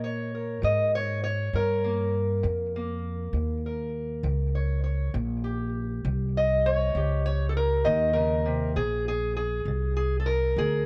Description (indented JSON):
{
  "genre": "acoustic country blues, solo or duo",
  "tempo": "66 BPM (dotted quarters)",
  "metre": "12/8",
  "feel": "straight",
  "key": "unclear",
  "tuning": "A4 = 440 Hz",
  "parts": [
    { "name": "fingerpicked steel-string acoustic guitar", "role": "melody", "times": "0.0-10.9 s", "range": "Bb2 to Eb5", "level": "-30 LUFS", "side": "equal", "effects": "plate reverb, tape echo" },
    { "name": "upright bass", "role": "bass", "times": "0.0-10.9 s", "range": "Bb1 to Bb2", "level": "-30 LUFS", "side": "equal", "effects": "none" }
  ],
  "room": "moderate small room ambience, RT60 0.5 s",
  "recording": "cassette tape",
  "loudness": "-27 LUFS",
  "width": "mono",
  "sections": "0.0-10.9 A section",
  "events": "none",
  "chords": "0.0 Eb7; 8.8 Bb7"
}